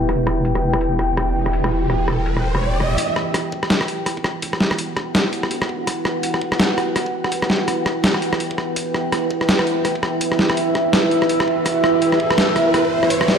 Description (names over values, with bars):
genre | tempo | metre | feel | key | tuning
half-time drum and bass | 166 BPM | 4/4 | swing 59% on 16ths, half-time | E minor | A4 = 439 Hz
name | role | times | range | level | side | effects
deep dark ambient pad | sustained chords | 0.0-13.4 s | E4 to G5 | -20 LUFS | right 1 dB | chorus, built-in reverb, vintage 12-bit sampler grit, sidechain pumping
deep soft wobble bass | bass | 0.0-13.4 s | D1 to B1 | -25 LUFS | equal | chorus, high-pass filter
boom bap sampler-style drum kit | drums | 0.1-13.4 s | hi-hat, rim click, snare drum | -20 LUFS | equal | low-pass filter on snare, studio reverb, low-pass filter on hats
riser | sound effects | 0.9-3.0, 9.9-13.4 s | none | -26 LUFS | right 1 dB | none
electronic kick drum | drums | 3.0-13.2 s | none | -34 LUFS | equal | none
room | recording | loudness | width
moderate lush hall reverb, RT60 1.9 s | dry, gritty hardware recording, lossy compression artefacts | -17 LUFS | side -7 dB against mid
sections
0.0-3.0 A section; 3.0-13.4 B section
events
riser 0.9-3.0, 9.9-13.4; build-up 3.0-13.4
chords
0.0 Emadd9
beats
| 0.09 0.45 0.82 1.18 | 1.54 1.90 2.26 2.62 | 2.98 3.35 3.71 4.07 | 4.43 4.79 5.15 5.51 | 5.88 6.24 6.60 6.96 | 7.32 7.68 8.04 8.41 | 8.77 9.13 9.49 9.85 | 10.21 10.57 10.94 11.30 | 11.66 12.02 12.38 12.74 | 13.11